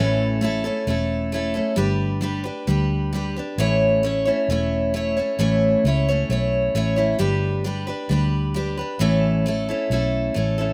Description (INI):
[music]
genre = honky-tonk and classic country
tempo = 133 BPM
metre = 4/4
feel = straight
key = A mixolydian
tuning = A4 = 441 Hz
[part]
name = picked steel-string acoustic guitar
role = accompaniment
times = 0.0-10.7 s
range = A2 to C#5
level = -23 LUFS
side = equal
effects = none
[part]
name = vintage muted fingered electric bass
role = bass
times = 0.0-10.7 s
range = E1 to D2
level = -26 LUFS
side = equal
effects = none
[sound]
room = little or no reverb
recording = recorded outdoors, with no room sound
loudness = -22 LUFS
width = mono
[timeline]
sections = 0.0-10.7 A section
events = none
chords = 0.0 A; 1.8 G; 3.6 A; 7.2 G; 9.0 A